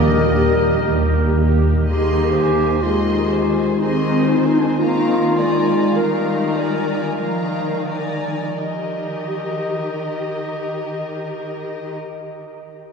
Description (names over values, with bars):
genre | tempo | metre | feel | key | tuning
classical | 39-64 BPM | 3/4 | rubato | Eb major | A4 = 440 Hz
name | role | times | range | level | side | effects
warm symphonic violin section | melody | 0.0-11.9 s | Eb5 to C6 | -32 LUFS | left 3 dB | none
clear clarinet | second line | 0.0-11.9 s | D4 to Eb5 | -22 LUFS | left 1 dB | none
clear oboe | second line | 0.0-0.9 s | Eb5 | -34 LUFS | equal | none
rich chamber violin section | second line | 0.0-11.9 s | Ab4 to Bb5 | -28 LUFS | left 1 dB | none
small flute group | second line | 0.0-0.9 s | none | barely audible | none | none
warm symphonic viola section | accompaniment | 0.0-11.9 s | Eb3 to G4 | -24 LUFS | left 1 dB | none
warm French horn section | sustained chords | 0.0-1.5 s | Bb3 to G4 | -26 LUFS | left 2 dB | none
warm trombone section | sustained chords | 0.0-1.5 s | Bb2 to G3 | -28 LUFS | right 1 dB | none
clear trumpet | stabs | 0.0-1.5 s | Bb4 | -27 LUFS | right 1 dB | none
dark chamber double bass section | bass | 0.0-1.8 s | Eb2 | -21 LUFS | equal | none
mellow tuba | bass | 0.0-1.8 s | Eb2 | -28 LUFS | right 3 dB | none
warm chamber cello section | bass | 0.0-11.9 s | Eb3 to C4 | -25 LUFS | equal | none
room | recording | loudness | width
wet cathedral reverb, RT60 5.6 s | heard from further back in the room | -17 LUFS | side -5 dB against mid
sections
0.0-1.9 A section; 1.9-8.6 B section; 8.6-12.4 C section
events
slowing down 0.4-8.6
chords
0.0 Eb; 1.9 Ab/Eb; 4.8 Bb7/Eb; 8.6 Eb